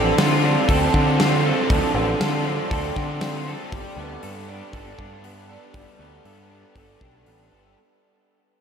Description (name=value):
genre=rock, shoegaze and dream pop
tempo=118 BPM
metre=4/4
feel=straight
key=unclear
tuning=A4 = 440 Hz
part: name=clean electric guitar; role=arpeggios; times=0.0-7.8 s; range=F3 to A4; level=-29 LUFS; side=right 2 dB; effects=ensemble chorus, tape echo
part: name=cranked stack guitar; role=riff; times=0.0-7.8 s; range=D3 to A4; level=-27 LUFS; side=left 7 dB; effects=overdrive, analog chorus
part: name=raw garage guitar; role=riff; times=0.0-7.8 s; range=D3 to A4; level=-26 LUFS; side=right 8 dB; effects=overdrive, reverse reverb
part: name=growling picked electric bass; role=bass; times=0.0-7.7 s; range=G1 to D3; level=-25 LUFS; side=equal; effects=overdrive
part: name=big rock drum kit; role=drums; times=0.2-7.4 s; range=hi-hat, kick drum, snare drum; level=-25 LUFS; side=equal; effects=none
room=wet huge ambient reverb, RT60 6.2 s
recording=dreamy mix soaked in reverb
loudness=-18 LUFS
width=side -7 dB against mid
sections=0.0-7.8 A section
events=fade-out 0.0-7.8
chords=0.0 Dm7; 3.7 Gadd9